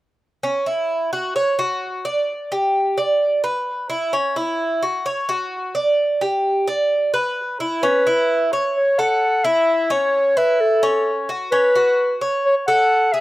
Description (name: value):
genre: latin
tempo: 130 BPM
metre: 4/4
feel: straight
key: A major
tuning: A4 = 440 Hz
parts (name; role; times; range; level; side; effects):
- Cuban tres; arpeggios; 0.4-13.2 s; C#4 to D5; -19 LUFS; right 1 dB; slapback echo
- warm clarinet; melody; 7.8-13.2 s; A4 to F#5; -17 LUFS; left 1 dB; none
room: little or no reverb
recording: recorded outdoors, with no room sound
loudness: -17 LUFS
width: side -16 dB against mid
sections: 0.4-7.8 A section; 7.8-13.2 B section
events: none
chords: 0.4 C#madd11; 1.4 F#5; 2.3 G5; 3.2 E5; 4.1 C#madd11; 5.1 F#5; 6.0 G5; 6.9 E5; 7.8 Aadd9; 9.7 F#m7; 11.5 A69/C#